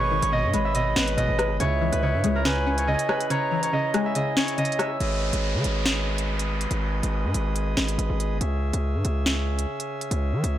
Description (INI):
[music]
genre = hip hop, drill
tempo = 141 BPM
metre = 4/4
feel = half-time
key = G# minor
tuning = A4 = 440 Hz
[part]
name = Celtic harp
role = melody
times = 0.0-6.5 s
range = G#4 to E5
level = -27 LUFS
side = right 1 dB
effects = none
[part]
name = mellow concert flute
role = second line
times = 0.0-5.0 s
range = E5 to C#6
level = -29 LUFS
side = right 2 dB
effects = digital delay
[part]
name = string-like resonator pluck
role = accompaniment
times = 0.0-5.0 s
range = B2 to C#5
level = -28 LUFS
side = left 2 dB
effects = chorus
[part]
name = pipe organ, cornet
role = sustained chords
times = 0.0-10.6 s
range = C#3 to E5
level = -33 LUFS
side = equal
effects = none
[part]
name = distorted 808-style bass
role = bass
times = 0.0-10.6 s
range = G1 to E3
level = -25 LUFS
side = equal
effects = distortion
[part]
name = drill drum kit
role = drums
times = 0.2-10.5 s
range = hi-hat, rim click, snare drum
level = -27 LUFS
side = equal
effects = none
[part]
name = downlifter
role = sound effects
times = 5.0-8.4 s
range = none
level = -34 LUFS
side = equal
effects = none
[sound]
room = light reverb, small room ambience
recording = blown-out, overdriven recording, overdrive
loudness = -22 LUFS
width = side -12 dB against mid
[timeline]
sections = 0.0-5.0 A section; 5.0-10.6 B section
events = kick muted 3.3-5.0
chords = 0.0 G#m; 1.6 C#m; 5.0 G#m; 8.4 C#m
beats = 0.33 0.75 1.18 | 1.60 2.03 2.45 2.88 | 3.30 3.73 4.16 4.58 | 5.01 5.43 5.86 6.28 | 6.71 7.13 7.56 7.98 | 8.41 8.84 9.26 9.69 | 10.11 10.54